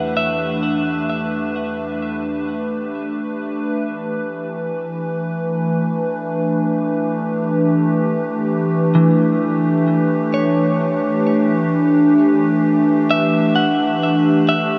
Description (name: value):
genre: ambient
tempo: free time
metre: none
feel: none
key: E dorian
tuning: A4 = 441 Hz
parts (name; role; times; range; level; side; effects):
- evolving wavetable pad; sustained chords; 0.0-14.8 s; E3 to B4; -19 LUFS; equal; chorus, built-in reverb, shimmer reverb
- clean electric guitar; arpeggios; 0.0-3.9, 8.9-14.8 s; E3 to F#5; -24 LUFS; equal; delay, shimmer reverb
- deep rumbling drone; bass; 0.0-3.8 s; E2; -47 LUFS; equal; built-in reverb
room: wet huge ambient reverb, RT60 7.3 s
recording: dark, warm production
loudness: -18 LUFS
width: mono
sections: 0.0-3.9 A section; 3.9-14.8 B section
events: fade-out on synth drone 0.0-3.9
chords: 0.0 Em7